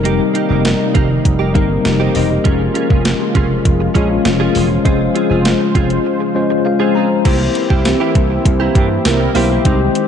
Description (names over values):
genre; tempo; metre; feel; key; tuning
1980s-style pop; 100 BPM; 4/4; straight; unclear; A4 = 439 Hz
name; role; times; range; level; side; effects
bright tine electric piano; accompaniment; 0.0-10.1 s; G3 to Bb5; -17 LUFS; left 6 dB; medium stereo tremolo
warm analog pad; sustained chords; 0.0-10.1 s; C3 to C5; -19 LUFS; right 1 dB; chorus
direct-recorded clean electric guitar; riff; 0.0-10.0 s; Bb3 to Ab4; -22 LUFS; right 6 dB; analog chorus, tape echo
vintage slap bass; bass; 0.0-9.9 s; E1 to G2; -18 LUFS; right 1 dB; none
clean 12-bit digital drum machine; drums; 0.1-10.1 s; crash cymbal, hi-hat, kick drum, snare drum, tambourine; -16 LUFS; right 1 dB; overdrive
mellow synth brass; stabs; 7.9-9.3 s; E3 to Bb4; -23 LUFS; right 6 dB; chorus
room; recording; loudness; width
moderate lush hall reverb, RT60 1.9 s; dark, warm production, nothing above 10.4 kHz; -12 LUFS; side -8 dB against mid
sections
0.0-7.3 A section; 7.3-10.1 B section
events
tine electric piano fill 6.4-7.3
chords
0.0 Cm7/F; 2.5 Bbm7/F; 4.9 Dbmaj7/F; 7.3 C7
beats
| 0.05 0.65 1.25 1.85 | 2.45 3.05 3.65 4.25 | 4.85 5.45 6.05 6.65 | 7.25 7.85 8.45 9.05 | 9.65